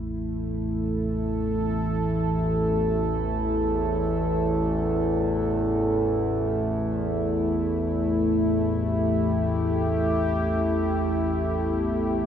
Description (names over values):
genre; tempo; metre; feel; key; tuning
dark ambient drone; free time; none; none; unclear; A4 = 439 Hz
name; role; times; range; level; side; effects
sweeping resonant pad; sustained chords; 0.0-12.3 s; A3 to A4; -25 LUFS; equal; chorus
analog drone; drone; 0.0-12.3 s; A1 to E2; -26 LUFS; equal; chorus
room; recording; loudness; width
wet lush hall reverb, RT60 2.6 s; dreamy mix soaked in reverb; -22 LUFS; side -8 dB against mid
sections
0.0-12.3 A section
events
none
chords
0.0 A5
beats
free time